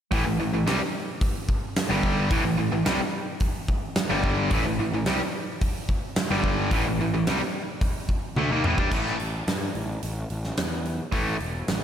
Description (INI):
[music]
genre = hard rock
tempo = 109 BPM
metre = 4/4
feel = straight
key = A minor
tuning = A4 = 438 Hz
[part]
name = distorted electric guitar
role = riff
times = 0.1-11.4 s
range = G2 to D4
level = -29 LUFS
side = left 8 dB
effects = overdrive, slapback echo
[part]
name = overdriven electric guitar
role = riff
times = 0.1-11.4 s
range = G2 to D4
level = -29 LUFS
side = right 8 dB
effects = slapback echo
[part]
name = fuzz picked electric bass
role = bass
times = 0.1-11.8 s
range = E1 to G2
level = -29 LUFS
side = equal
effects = overdrive
[part]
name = huge arena drum kit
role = drums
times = 0.1-11.8 s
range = crash cymbal, hi-hat, kick drum, snare drum, toms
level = -27 LUFS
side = equal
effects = none
[sound]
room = moderate lush hall reverb, RT60 2.9 s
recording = big arena sound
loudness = -23 LUFS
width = side -9 dB against mid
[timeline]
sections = 0.1-8.9 A section; 8.9-11.8 B section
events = drum fill 8.4-8.9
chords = 0.1 Am; 8.9 A5